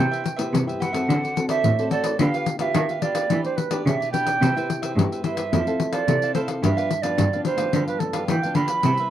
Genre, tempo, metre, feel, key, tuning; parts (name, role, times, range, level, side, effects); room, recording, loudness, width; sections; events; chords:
samba and choro; 108 BPM; 4/4; straight; A4 = 440 Hz
mellow concert flute; melody; 0.0-9.1 s; A4 to B5; -25 LUFS; right 5 dB
cavaquinho; accompaniment; 0.0-9.1 s; D4 to F5; -33 LUFS; right 4 dB
nylon-string guitar; accompaniment; 0.0-9.1 s; G2 to A4; -28 LUFS; left 2 dB
rich cello; bass; 0.0-8.9 s; F2 to E3; -23 LUFS; right 1 dB
pandeiro; percussion; 0.1-9.1 s; -26 LUFS; left 6 dB
little or no reverb; dry, close 1970s-style studio recording; -20 LUFS; side -11 dB against mid
0.0-9.1 A section
0.0 Cmaj7; 1.1 D7; 2.2 G7/D; 3.3 Em7; 4.4 Cmaj7; 5.5 Fmaj7; 6.6 G7